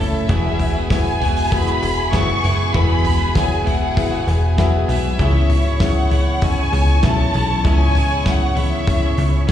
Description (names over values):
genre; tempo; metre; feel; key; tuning
piano-driven pop; 98 BPM; 4/4; straight; E major; A4 = 444 Hz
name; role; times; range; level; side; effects
warm studio violin section; melody; 0.0-9.5 s; E5 to C#6; -24 LUFS; equal; slapback echo
rich studio violin section; second line; 0.0-9.5 s; G#4 to C#6; -27 LUFS; right 1 dB; slapback echo
clear concert grand piano; accompaniment; 0.0-9.5 s; G#2 to E5; -25 LUFS; left 4 dB; slapback echo
glass harmonica; sustained chords; 0.0-9.5 s; A3 to E5; -30 LUFS; left 4 dB; none
twelve-string electric guitar; riff; 0.0-9.5 s; C#3 to A4; -27 LUFS; right 5 dB; slapback echo
plucky analog bass; bass; 0.0-9.5 s; E1 to C#2; -18 LUFS; equal; none
damped 70s drum kit; drums; 0.3-9.5 s; hi-hat, kick drum, snare drum, toms; -20 LUFS; left 1 dB; none
room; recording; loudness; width
light reverb; live gig heard through the venue's PA, recital hall reverb, small room ambience; -15 LUFS; side -10 dB against mid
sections
0.0-9.5 A section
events
none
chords
0.3 Eadd9; 5.2 C#m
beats
| 0.29 0.91 1.52 2.13 | 2.75 3.36 3.97 4.58 | 5.20 5.81 6.42 7.03 | 7.65 8.26 8.87 9.48